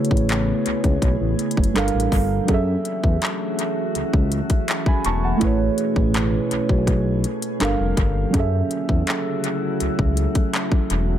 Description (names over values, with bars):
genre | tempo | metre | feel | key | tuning
contemporary R&B | 82 BPM | 4/4 | straight | F# minor | A4 = 442 Hz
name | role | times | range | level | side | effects
muted felt-like synth keys | accompaniment | 0.0-11.2 s | F#3 to C#6 | -23 LUFS | right 3 dB | chorus
glassy FM pad | sustained chords | 0.0-11.2 s | B2 to G#4 | -28 LUFS | left 3 dB | ensemble chorus, built-in reverb, sidechain pumping
trap drum kit | drums | 0.0-11.1 s | handclaps, hi-hat, kick drum | -22 LUFS | left 1 dB | analog delay
smooth synth bass | bass | 0.1-11.2 s | E1 to F#2 | -22 LUFS | left 1 dB | none
room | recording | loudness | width
digital ambience | echo-heavy mix | -18 LUFS | side -10 dB against mid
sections
0.0-11.2 A section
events
none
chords
0.0 Amaj9; 1.8 Gm7; 2.5 F#m7; 5.4 Amaj9; 7.6 Gm7; 8.3 F#m7